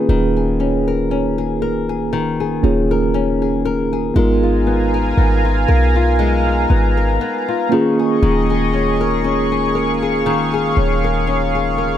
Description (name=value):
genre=contemporary R&B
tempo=59 BPM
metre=4/4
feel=swing 54% on 16ths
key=unclear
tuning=A4 = 440 Hz
part: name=mellow tine electric piano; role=accompaniment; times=0.0-12.0 s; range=A#3 to B4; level=-19 LUFS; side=right 2 dB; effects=slow stereo tremolo
part: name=flamenco guitar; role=arpeggios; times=0.0-12.0 s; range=D#3 to A#4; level=-21 LUFS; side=left 7 dB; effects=digital delay
part: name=clean 808-style bass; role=bass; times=0.1-12.0 s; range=D#1 to B1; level=-19 LUFS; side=equal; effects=none
part: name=chorused pulse-width pad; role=sustained chords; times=4.2-12.0 s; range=G#4 to C#6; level=-20 LUFS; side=right 1 dB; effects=none
room=light reverb, digital ambience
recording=none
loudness=-14 LUFS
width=side -10 dB against mid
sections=0.0-12.0 A section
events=none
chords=0.0 D#7sus4; 4.2 G#m69; 7.7 D#7sus4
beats=| 0.09 1.10 2.12 3.14 | 4.16 5.17 6.19 7.21 | 8.22 9.24 10.26 11.28